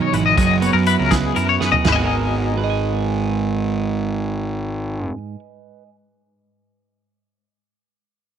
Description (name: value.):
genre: math rock and midwest emo.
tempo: 81 BPM (dotted quarters).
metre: 6/8.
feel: straight.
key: G# minor.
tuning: A4 = 440 Hz.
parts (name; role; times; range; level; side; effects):
twelve-string electric guitar; accompaniment; 0.0-6.0 s; G#2 to G#5; -22 LUFS; right 8 dB; none.
twangy electric guitar; arpeggios; 0.0-5.2 s; G#4 to G#5; -20 LUFS; left 10 dB; tremolo.
fuzz picked electric bass; bass; 0.1-5.1 s; F#1 to F#2; -22 LUFS; left 1 dB; overdrive.
loose indie drum kit; drums; 0.1-2.0 s; crash cymbal, hi-hat, kick drum, snare drum, toms; -22 LUFS; right 2 dB; none.
room: light reverb, small room ambience.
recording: 1960s-style stereo with parts hard left and right.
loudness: -17 LUFS.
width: side -8 dB against mid.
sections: 0.0-1.8 A section; 1.8-4.8 B section.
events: drum fill 1.6.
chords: 0.4 F#9sus4; 1.8 G#m9.